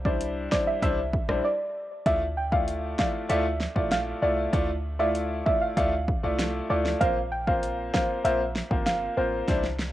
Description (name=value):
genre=dancehall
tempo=97 BPM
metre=4/4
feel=straight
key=D minor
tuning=A4 = 441 Hz
part: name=clean 808-style bass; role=bass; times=0.0-9.9 s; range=G1 to D2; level=-32 LUFS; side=equal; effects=none
part: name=soft round pluck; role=melody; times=0.1-9.3 s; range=C5 to G5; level=-29 LUFS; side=right 1 dB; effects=chorus, analog delay
part: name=clear baby grand piano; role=accompaniment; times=0.1-9.6 s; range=G3 to D5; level=-28 LUFS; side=left 1 dB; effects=sidechain pumping
part: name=deep house drum kit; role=drums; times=0.1-9.9 s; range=hi-hat, kick drum, rim click, snare drum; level=-28 LUFS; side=equal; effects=none
room=light reverb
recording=home recording on cassette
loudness=-24 LUFS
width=side -14 dB against mid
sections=0.0-9.9 A section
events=break 1.4-2.1; drum fill 9.5-9.9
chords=0.0 Cadd9; 2.1 Dmadd9; 7.0 Bbsus2